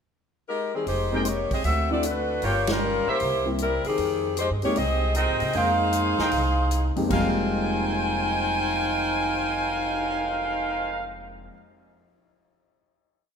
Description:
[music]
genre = jazz, big band swing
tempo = 154 BPM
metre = 4/4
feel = swing 65% on 8ths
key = F minor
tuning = A4 = 443 Hz
[part]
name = warm saxophone section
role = melody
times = 0.5-11.0 s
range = Eb3 to Ab5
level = -25 LUFS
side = left 1 dB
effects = none
[part]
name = upright bass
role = bass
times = 0.9-11.5 s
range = F1 to C3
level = -30 LUFS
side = equal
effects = none
[part]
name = swinging big-band drum kit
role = drums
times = 0.9-10.2 s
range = crash cymbal, cymbal swell, hi-hat, kick drum, ride cymbal, snare drum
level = -35 LUFS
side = equal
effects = none
[part]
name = warm concert grand piano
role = accompaniment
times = 1.1-11.5 s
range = F2 to G5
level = -29 LUFS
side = left 1 dB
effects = none
[part]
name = warm trumpet section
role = stabs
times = 1.1-11.0 s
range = Eb4 to G5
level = -31 LUFS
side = right 2 dB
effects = none
[sound]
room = moderate concert hall reverb, RT60 2.0 s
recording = minimal, uncompressed stereo recording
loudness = -22 LUFS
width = side -6 dB against mid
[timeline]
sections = 0.0-0.9 pickup bar; 0.9-7.1 A section; 7.1-10.2 final chord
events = band accent 2.6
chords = 0.0 Ebadd11; 0.9 Fm11; 1.6 D7; 2.4 Gm7b5; 3.2 C7; 4.0 Fm11

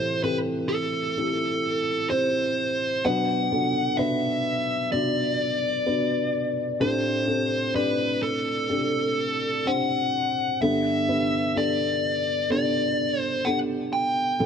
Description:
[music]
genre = pop ballad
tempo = 64 BPM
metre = 4/4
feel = straight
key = G major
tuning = A4 = 444 Hz
[part]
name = dark smooth lead guitar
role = melody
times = 0.0-14.5 s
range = A4 to G5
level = -25 LUFS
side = left 1 dB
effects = overdrive
[part]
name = felt-muted upright piano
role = accompaniment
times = 0.0-14.5 s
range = G2 to D5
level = -26 LUFS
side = equal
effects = none
[sound]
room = moderate lush hall reverb, RT60 2.5 s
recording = none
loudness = -22 LUFS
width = side -7 dB against mid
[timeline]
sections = 0.0-14.5 A section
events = none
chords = 0.0 Am7; 3.0 Bm; 6.8 D7sus4/A; 10.6 Gadd9

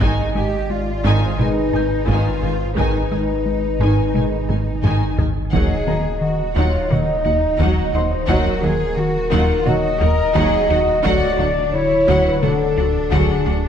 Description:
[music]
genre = cinematic, hybrid orchestral and electronic film score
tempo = 87 BPM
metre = 4/4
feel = straight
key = unclear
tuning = A4 = 440 Hz
[part]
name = rich symphonic violin section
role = melody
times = 0.0-13.5 s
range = Gb5 to Ab5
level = -30 LUFS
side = left 4 dB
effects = none
[part]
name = dark studio violin section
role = second line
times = 0.0-13.6 s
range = Eb4 to F#4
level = -30 LUFS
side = left 3 dB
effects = none
[part]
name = rich symphonic viola section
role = accompaniment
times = 0.0-13.5 s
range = Eb3 to Gb3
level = -27 LUFS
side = right 2 dB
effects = none
[part]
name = dark trombone section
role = sustained chords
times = 0.0-12.7 s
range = D3 to Ab3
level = -32 LUFS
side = right 2 dB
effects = none
[part]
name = mellow French horn section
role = sustained chords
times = 0.0-13.7 s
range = F#4 to Eb5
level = -21 LUFS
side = left 2 dB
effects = none
[part]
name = resonant blip pluck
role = arpeggios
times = 0.0-13.7 s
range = D3 to Ab4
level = -29 LUFS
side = equal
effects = phaser, ping-pong delay
[part]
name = rubbery square bass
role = riff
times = 0.0-13.7 s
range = D2 to Ab3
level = -23 LUFS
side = left 1 dB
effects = none
[part]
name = punchy sub bass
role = bass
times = 0.0-13.7 s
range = D1 to Ab1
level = -27 LUFS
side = equal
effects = none
[part]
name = rich studio double bass section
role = bass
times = 0.0-13.5 s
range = Ab1 to Eb2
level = -25 LUFS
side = right 4 dB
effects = none
[part]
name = rich symphonic cello section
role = bass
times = 0.0-13.7 s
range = D4 to Bb4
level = -26 LUFS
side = right 2 dB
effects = none
[part]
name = taiko ensemble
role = drums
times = 0.0-13.7 s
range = none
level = -25 LUFS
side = equal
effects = none
[part]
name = felt-muted upright piano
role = texture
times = 0.0-13.7 s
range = C5 to G6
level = -36 LUFS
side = left 2 dB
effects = ping-pong delay
[sound]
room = wet concert hall reverb, RT60 2.1 s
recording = dark, warm production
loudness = -16 LUFS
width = side -8 dB against mid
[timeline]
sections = 0.0-13.7 A section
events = drum fill 4.5-5.5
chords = 0.0 Abm; 5.5 Ebm; 11.0 D

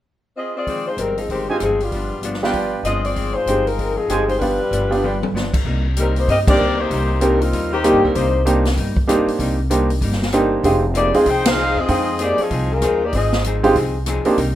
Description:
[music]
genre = jazz, big band swing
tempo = 193 BPM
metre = 4/4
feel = swing 62% on 8ths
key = C minor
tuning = A4 = 439 Hz
[part]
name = mellow saxophone section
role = melody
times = 0.4-8.4, 11.0-13.4 s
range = Eb3 to G5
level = -20 LUFS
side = left 2 dB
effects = plate reverb
[part]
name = vintage hollow-body jazz guitar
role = accompaniment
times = 0.7-14.6 s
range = F2 to Ab4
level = -27 LUFS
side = left 3 dB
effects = plate reverb
[part]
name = swinging big-band drum kit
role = drums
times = 0.7-14.5 s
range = crash cymbal, hi-hat, kick drum, ride cymbal, rim click, snare drum, toms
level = -24 LUFS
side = equal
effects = none
[part]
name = upright bass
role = bass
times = 1.0-14.6 s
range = F1 to G2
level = -22 LUFS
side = equal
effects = none
[part]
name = clear baby grand piano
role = accompaniment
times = 1.5-14.4 s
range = G3 to G5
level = -18 LUFS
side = right 2 dB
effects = plate reverb
[part]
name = clear trumpet section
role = stabs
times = 1.5-5.2 s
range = F4 to Ab5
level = -27 LUFS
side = right 3 dB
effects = plate reverb
[sound]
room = wet small room reverb, RT60 0.5 s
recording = rough home demo mix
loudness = -16 LUFS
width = side -13 dB against mid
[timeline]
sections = 0.7-5.7 A section; 5.7-14.6 B section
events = drum fill 5.0-5.3; band accent 6.4, 11.4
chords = 0.0 Fm; 0.7 Fm7; 1.9 G7; 3.2 Fm7; 4.4 G7; 5.7 Cm7; 10.6 Fm7

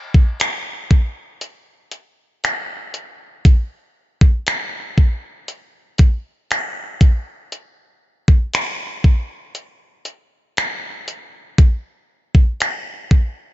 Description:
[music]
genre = R&B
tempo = 59 BPM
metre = 4/4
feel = straight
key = none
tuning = none
[part]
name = crisp 8-bit digital drum machine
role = drums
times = 0.1-13.3 s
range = finger snaps, hi-hat, kick drum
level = -14 LUFS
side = equal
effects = none
[sound]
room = little or no reverb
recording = nothing above 7.8 kHz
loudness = -16 LUFS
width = side -16 dB against mid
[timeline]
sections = 0.0-13.5 A section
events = none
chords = none

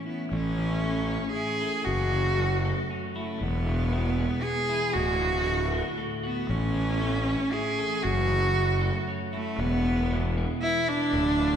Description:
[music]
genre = post-rock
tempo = 117 BPM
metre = 3/4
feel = straight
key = unclear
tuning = A4 = 440 Hz
[part]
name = clear cello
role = melody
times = 0.0-11.6 s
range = A3 to G#4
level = -27 LUFS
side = right 1 dB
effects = none
[part]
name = twelve-string electric guitar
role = arpeggios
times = 0.0-11.6 s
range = D2 to A4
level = -32 LUFS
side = left 2 dB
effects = none
[part]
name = fuzz fingered electric bass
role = bass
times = 0.3-11.6 s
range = D1 to A1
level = -29 LUFS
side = equal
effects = overdrive
[sound]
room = wet church reverb, RT60 3.2 s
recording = recorded in a church or concert hall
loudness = -24 LUFS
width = side -8 dB against mid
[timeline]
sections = 0.3-11.6 A section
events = none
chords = 0.0 A; 1.9 F#m7; 3.4 E; 5.0 D; 6.5 Amaj7; 8.1 F#m7; 9.6 E

